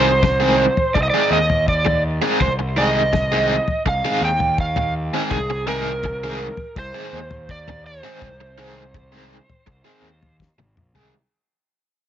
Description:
psychedelic rock; 83 BPM; 4/4; straight; A4 = 443 Hz
overdriven slide guitar; melody; 0.0-10.4 s; Ab4 to G5; -21 LUFS; right 2 dB; tape echo
overdriven electric guitar; riff; 0.0-11.1 s; Eb3 to Ab4; -22 LUFS; equal; tremolo
fuzz picked electric bass; bass; 0.0-11.1 s; Ab1 to Eb2; -25 LUFS; equal; overdrive
damped 70s drum kit; drums; 0.2-11.1 s; kick drum, snare drum, toms; -23 LUFS; left 2 dB
light reverb, small room reverb; 1960s-style stereo, nothing above 7.7 kHz; -17 LUFS; side -10 dB against mid
0.0-11.1 A section
fade-out 0.0-11.1; drum fill 10.4-11.1
0.0 Ab/C
0.23 0.95 1.68 | 2.40 3.13 3.85 4.58 | 5.30 6.03 6.76 7.48 | 8.21 8.94 9.66 10.39

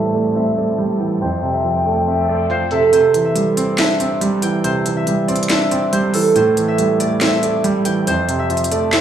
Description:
hip hop, trap; 140 BPM; 4/4; half-time; A4 = 441 Hz
concert harp; melody; 0.0-9.0 s; A4 to G5; -18 LUFS; right 1 dB; analog delay
hollow concert flute; second line; 0.0-2.9 s; E5 to A5; -24 LUFS; left 4 dB; analog delay
dark concert grand piano; accompaniment; 0.0-9.0 s; F2 to D4; -18 LUFS; right 3 dB
rich studio string section; sustained chords; 0.0-2.9 s; F2 to A4; -25 LUFS; left 1 dB
trap drum kit; drums; 0.1-9.0 s; handclaps, hi-hat, snare drum; -21 LUFS; equal
light reverb, studio reverb; dry, gritty hardware recording, low-pass filter, small room reverb; -14 LUFS; side -9 dB against mid
0.0-2.9 A section; 2.9-9.0 B section
filter sweep 0.0-2.9; kick muted 2.9-9.0
0.0 Am7; 1.2 F; 2.9 Cadd9; 6.4 Am7; 8.1 F
0.36 0.79 | 1.21 1.64 2.07 2.50 | 2.93 3.36 3.79 4.21 | 4.64 5.07 5.50 5.93 | 6.36 6.79 7.21 7.64 | 8.07 8.50 8.93

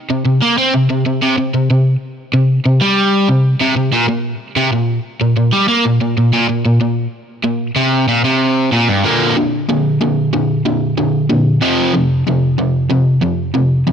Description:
rock; 94 BPM; 4/4; straight; A4 = 442 Hz
crunchy overdriven guitar; solo; 0.1-13.9 s; F2 to C4; -12 LUFS; equal
light reverb; -12 LUFS; side -8 dB against mid
0.0-9.0 A section; 9.0-13.9 B section
0.0 C5; 3.9 Gmadd11 (rootless); 9.0 Bb; 11.6 F5
0.09 0.73 | 1.37 2.01 2.65 3.29 | 3.93 4.57 5.21 5.84 | 6.49 7.13 7.77 8.41 | 9.05 9.69 10.33 10.98 | 11.62 12.26 12.90 13.55

